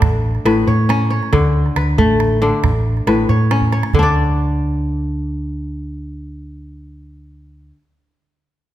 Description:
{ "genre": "west african traditional, West African string and xylophone music", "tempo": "92 BPM (dotted quarters)", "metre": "12/8", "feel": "straight", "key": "unclear", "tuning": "A4 = 440 Hz", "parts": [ { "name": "kora", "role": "arpeggios", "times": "0.0-7.8 s", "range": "A2 to D5", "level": "-18 LUFS", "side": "left 2 dB", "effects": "none" }, { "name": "hollow-body short-scale fingered electric bass", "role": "bass", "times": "0.0-7.7 s", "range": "A1 to A2", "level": "-18 LUFS", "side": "equal", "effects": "none" }, { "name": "calabash", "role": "percussion", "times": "0.0-4.1 s", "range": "none", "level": "-21 LUFS", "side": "right 4 dB", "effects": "none" } ], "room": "moderate recital hall reverb, RT60 1.6 s", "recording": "none", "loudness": "-14 LUFS", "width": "side -13 dB against mid", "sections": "0.0-3.9 A section; 3.9-6.6 B section", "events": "drum fill 3.6-3.9", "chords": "0.0 D5; 3.9 N.C.", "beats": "0.01 0.67 | 1.32 1.98 2.63 3.29 | 3.95 4.60 5.26 5.92" }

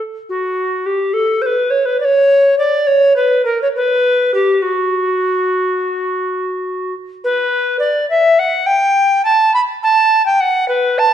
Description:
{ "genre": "classical, baroque-style fantasia for unaccompanied recorder", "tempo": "69 BPM (dotted quarters)", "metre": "12/8", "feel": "rubato", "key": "unclear", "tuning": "A4 = 440 Hz", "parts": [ { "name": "tenor recorder", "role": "solo", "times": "0.3-11.1 s", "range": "F#4 to B5", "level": "-12 LUFS", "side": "equal", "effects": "none" } ], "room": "wet recital hall reverb, RT60 1.4 s", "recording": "nothing above 10.5 kHz", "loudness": "-12 LUFS", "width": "side -9 dB against mid", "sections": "0.0-11.1 A section", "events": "none", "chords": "none", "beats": "| 0.30 1.15 2.02 2.89 | 3.76 4.64 5.49 6.36 | 7.23 8.09 8.96 9.83 | 10.70" }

